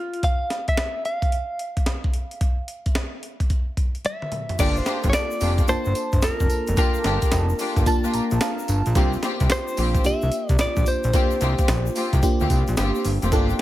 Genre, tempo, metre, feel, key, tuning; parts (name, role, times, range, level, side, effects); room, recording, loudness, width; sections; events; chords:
R&B, new jack swing; 110 BPM; 4/4; swing 65% on 16ths; G dorian; A4 = 439 Hz
direct-recorded clean electric guitar; melody; 0.0-12.5 s; F4 to F5; -27 LUFS; equal; tremolo, tape echo
breakbeat sampler-style drum kit; drums; 0.1-13.6 s; crash cymbal, hi-hat, kick drum, snare drum, tambourine, toms; -23 LUFS; equal
FM electric piano with soft pad layer; accompaniment; 4.6-13.6 s; Bb3 to Bb5; -27 LUFS; right 1 dB; chorus
dark studio string section; stabs; 4.6-13.6 s; Bb3 to G4; -28 LUFS; left 3 dB
fat analog bass; bass; 4.6-13.5 s; F1 to D2; -23 LUFS; equal
egg shaker; percussion; 4.6-13.6 s; -41 LUFS; left 9 dB
little or no reverb; -20 LUFS; side -14 dB against mid
0.0-4.6 A section; 4.6-13.6 B section
drum fill 4.0-4.6; FM electric piano fill 7.9-9.0
0.0 N.C.; 4.6 Gm7; 9.0 C7sus4